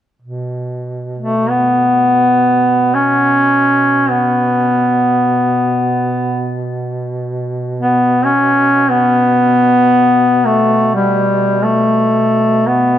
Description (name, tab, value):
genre	caucasian folk, Caucasian lament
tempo	free time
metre	none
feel	none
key	unclear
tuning	A4 = 442 Hz
part	mellow duduk	drone	0.2-13.0 s	B2	-22 LUFS	right 2 dB	none
part	warm duduk	melody	1.2-13.0 s	G3 to C#4	-11 LUFS	equal	none
room	moderate church reverb, RT60 3.5 s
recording	dark, warm production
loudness	-11 LUFS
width	side -11 dB against mid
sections	0.2-13.0 A section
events	none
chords	none